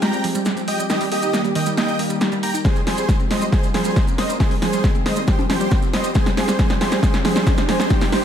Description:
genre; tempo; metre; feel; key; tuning
uplifting trance; 137 BPM; 4/4; straight; F minor; A4 = 442 Hz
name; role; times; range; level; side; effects
big supersaw lead; melody; 0.0-8.2 s; G4 to Bb5; -24 LUFS; right 1 dB; sidechain pumping, ping-pong delay
lush unison pad; sustained chords; 0.0-8.2 s; Eb3 to Bb4; -28 LUFS; left 1 dB; chorus, sidechain pumping
analog pluck; arpeggios; 0.0-8.2 s; Eb3 to Eb4; -25 LUFS; right 3 dB; chorus, sidechain pumping, dub echo
punchy analog drum machine; drums; 0.0-8.2 s; congas, hi-hat, snare drum; -23 LUFS; equal; overdrive, sidechain pumping on hats, sidechain pumping on perc
maracas; percussion; 0.0-8.1 s; none; -36 LUFS; right 5 dB; none
electronic kick drum; drums; 2.6-8.0 s; none; -19 LUFS; equal; overdrive
riser; sound effects; 5.5-8.2 s; none; -30 LUFS; equal; none
room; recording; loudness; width
light reverb, digital ambience; none; -16 LUFS; side -9 dB against mid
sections
0.0-8.2 A section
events
build-up 0.0-8.2; drum fill 0.0-8.2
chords
0.0 Fmadd9; 0.9 Eb; 2.6 Fmadd9; 3.5 Bbm; 4.4 Ab; 5.3 Csus4; 6.2 Fmadd9

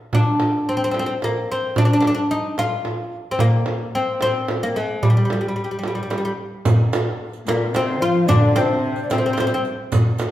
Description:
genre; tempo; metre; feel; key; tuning
Persian modal ensemble; 74 BPM (dotted quarters); 6/8; straight; unclear; A4 = 440 Hz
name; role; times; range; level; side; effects
oud; melody; 0.1-9.6 s; G3 to F4; -21 LUFS; left 1 dB; none
frame drum; percussion; 0.1-10.3 s; none; -21 LUFS; right 1 dB; none
riq; percussion; 6.7-10.3 s; none; -35 LUFS; right 5 dB; none
tombak; percussion; 6.7-10.3 s; none; -26 LUFS; left 1 dB; none
breathy bright low ney; second line; 7.5-9.7 s; Bb4 to F5; -27 LUFS; left 2 dB; none
warm cello; second line; 7.5-9.7 s; Bb2 to F3; -24 LUFS; left 2 dB; none
room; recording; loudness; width
wet large studio reverb, RT60 1.4 s; band playing live in one room; -18 LUFS; side -13 dB against mid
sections
0.0-6.7 A section; 6.7-10.3 B section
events
none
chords
none

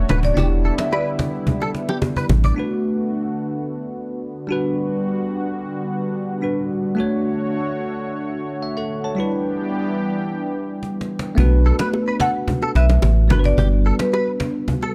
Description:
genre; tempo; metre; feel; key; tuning
afrobeats; 109 BPM; 4/4; straight; unclear; A4 = 440 Hz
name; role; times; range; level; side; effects
marimba with medium mallets; melody; 0.0-2.3, 12.2-14.9 s; B4 to F#5; -27 LUFS; equal; none
bell-like tine electric piano; accompaniment; 0.0-14.9 s; G3 to A5; -26 LUFS; equal; phaser
lush unison pad; sustained chords; 0.0-11.4 s; D3 to C#5; -31 LUFS; equal; chorus
warm sub bass; bass; 0.0-2.5, 11.4-13.9 s; D1 to B1; -18 LUFS; equal; none
direct-recorded clean electric guitar; riff; 0.1-2.5, 11.7-14.9 s; G4 to D5; -29 LUFS; equal; ensemble chorus
cajon; drums; 0.1-2.6, 10.8-14.9 s; none; -29 LUFS; equal; none
bongos and congas; percussion; 0.1-2.4, 11.4-14.9 s; none; -26 LUFS; equal; none
room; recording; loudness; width
studio reverb; dry, gritty hardware recording; -21 LUFS; mono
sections
0.0-2.6 A section; 2.6-11.4 B section; 11.4-14.9 A section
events
drum fill 1.5-2.6, 10.8-11.4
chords
0.4 Em7; 2.6 Bm7; 4.5 Gmaj7; 7.0 Dmaj7; 9.2 Em7; 11.4 Bm7; 13.3 Gmaj7

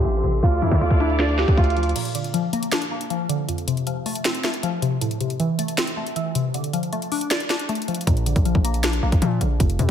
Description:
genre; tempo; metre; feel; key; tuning
hip hop, trap; 157 BPM; 4/4; half-time; unclear; A4 = 437 Hz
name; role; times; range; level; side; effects
felt-muted upright piano; melody; 0.0-1.9 s; D4 to G4; -24 LUFS; right 2 dB; low-pass filter, diffuse ambient delay
glassy wavetable pluck; accompaniment; 0.0-9.9 s; F2 to D5; -24 LUFS; left 2 dB; chorus, low-pass filter
clear symphonic string section; sustained chords; 0.0-1.9 s; A4 to D6; -31 LUFS; right 1 dB; none
distorted 808-style bass; bass; 0.0-1.9, 8.1-9.9 s; F1 to D3; -22 LUFS; equal; distortion
trap drum kit; drums; 0.0-9.9 s; crash cymbal, hi-hat, kick drum, snare drum; -23 LUFS; equal; none
room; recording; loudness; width
moderate lush hall reverb, RT60 1.8 s, digital ambience; dreamy mix soaked in reverb, low-pass filter; -20 LUFS; side -9 dB against mid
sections
0.0-2.0 A section; 2.0-9.9 B section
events
filter sweep 0.0-2.0; break 2.0-8.1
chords
0.4 Dm; 2.0 Bb; 3.5 F; 5.0 Am; 6.5 Dm; 8.1 Bb

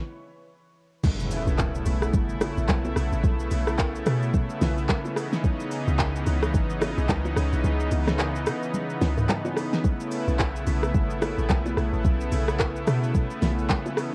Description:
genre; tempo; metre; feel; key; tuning
amapiano; 109 BPM; 4/4; swing 58% on 16ths; unclear; A4 = 443 Hz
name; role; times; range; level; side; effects
lush unison pad; sustained chords; 1.0-14.1 s; C#3 to E4; -32 LUFS; equal; chorus, sidechain pumping
smooth R&B drum kit; drums; 1.0-14.1 s; crash cymbal, handclaps, hi-hat, kick drum, rim click, shaker, snare drum, toms; -29 LUFS; equal; overdrive, cassette tape
congas and bongos; percussion; 1.0-14.0 s; none; -34 LUFS; equal; none
impact; sound effects; 1.0-3.2 s; none; -35 LUFS; equal; none
deep log drum bass; bass; 1.5-13.7 s; G#1 to C#3; -29 LUFS; equal; none
room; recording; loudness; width
light reverb; home recording on cassette; -25 LUFS; mono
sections
0.0-1.0 A section; 1.0-14.1 B section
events
stop 0.0-1.0; drop 1.0-14.1; impact 1.0-3.2; kick muted 7.6-9.8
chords
0.0 N.C.; 1.0 B9sus4; 5.2 C#m9; 9.8 B9sus4

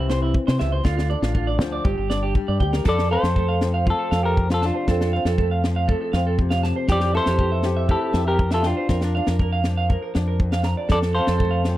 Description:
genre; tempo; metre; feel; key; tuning
highlife guitar band; 119 BPM; 4/4; straight; F major; A4 = 441 Hz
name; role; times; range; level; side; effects
flamenco guitar; accompaniment; 0.0-11.8 s; F2 to A4; -29 LUFS; left 6 dB; none
electric guitar through a small old amp; arpeggios; 0.0-11.6 s; E4 to Bb5; -27 LUFS; right 6 dB; slapback echo
deep dub fingered electric bass; bass; 0.0-11.8 s; G1 to C3; -22 LUFS; equal; none
tight funk drum kit; drums; 0.1-11.8 s; crash cymbal, kick drum, snare drum; -23 LUFS; equal; none
semi-hollow electric guitar; melody; 2.9-11.8 s; D4 to D5; -23 LUFS; left 2 dB; none
room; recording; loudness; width
small room ambience; dry, close 1970s-style studio recording; -19 LUFS; side -14 dB against mid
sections
0.0-2.9 A section; 2.9-11.8 B section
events
drum fill 2.4-2.9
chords
0.0 C; 0.8 Dm; 1.9 G5; 2.9 F; 6.9 C/F; 8.9 Bb/F; 10.9 F

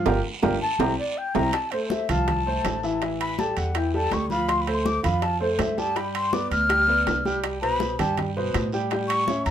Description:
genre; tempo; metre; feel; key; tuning
Afro-Cuban jazz; 163 BPM; 4/4; straight; C major; A4 = 440 Hz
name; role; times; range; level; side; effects
warm concert grand piano; accompaniment; 0.0-9.5 s; B2 to G5; -27 LUFS; right 1 dB; none
upright bass; bass; 0.0-9.5 s; G1 to A2; -29 LUFS; right 1 dB; none
bongos; percussion; 0.1-9.5 s; none; -34 LUFS; left 7 dB; none
congas; percussion; 0.1-9.5 s; none; -32 LUFS; left 1 dB; none
guiro; percussion; 0.1-9.5 s; none; -40 LUFS; right 5 dB; none
timbales; percussion; 0.1-9.5 s; none; -30 LUFS; right 8 dB; none
breathy mellow silver concert flute; second line; 0.6-9.5 s; C5 to F6; -25 LUFS; left 2 dB; none
room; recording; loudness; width
moderate studio reverb, RT60 0.5 s; minimal, uncompressed stereo recording; -22 LUFS; side -10 dB against mid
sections
0.0-1.5 A section; 1.5-9.5 A section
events
flute solo 0.0-9.5; band accent 0.1-1.5; drum fill 0.4-1.5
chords
0.1 Gm7; 0.8 C; 1.5 Fmaj7; 3.0 A5; 4.5 Dm7; 6.0 G7; 7.4 C5; 8.9 A7

